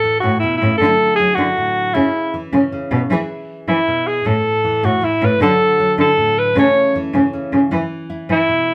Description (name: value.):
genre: highlife guitar band.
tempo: 104 BPM (dotted quarters).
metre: 12/8.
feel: straight.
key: A major.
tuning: A4 = 440 Hz.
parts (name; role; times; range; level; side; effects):
clear alto saxophone; melody; 0.0-8.7 s; E4 to C#5; -17 LUFS; equal; none.
nylon-string guitar; accompaniment; 0.0-8.7 s; A2 to B4; -26 LUFS; equal; none.
warm cello; bass; 0.2-8.4 s; A2 to E3; -20 LUFS; equal; none.
room: moderate studio reverb, RT60 0.7 s.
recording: band playing live in one room.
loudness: -16 LUFS.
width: mono.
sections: 0.0-8.7 A section.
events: none.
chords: 0.0 A; 0.8 Dadd9; 2.0 A/C#; 3.1 E; 4.3 A5; 5.4 Dadd9; 6.6 A/C#; 7.7 E5.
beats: 0.23 0.81 1.38 | 1.96 2.53 3.11 3.69 | 4.26 4.84 5.41 5.99 | 6.57 7.14 7.72 8.30.